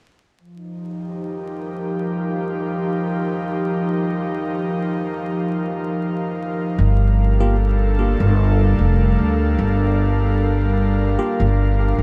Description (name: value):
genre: ambient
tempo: 75 BPM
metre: 4/4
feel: swing 54% on 16ths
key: unclear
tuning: A4 = 440 Hz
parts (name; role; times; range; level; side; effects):
- airy breathy pad; sustained chords; 0.4-12.0 s; F3 to F5; -24 LUFS; equal; chorus, vintage 12-bit sampler grit
- upright bass; bass; 6.8-12.0 s; F1 to D2; -19 LUFS; equal; none
- barky tine electric piano; stabs; 7.4-11.5 s; Bb3 to G4; -28 LUFS; equal; phaser, dub echo
room: light reverb, small room reverb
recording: echo-heavy mix, vinyl crackle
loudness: -20 LUFS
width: mono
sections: 0.4-12.0 A section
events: none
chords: 0.4 F7sus4; 6.8 Gm7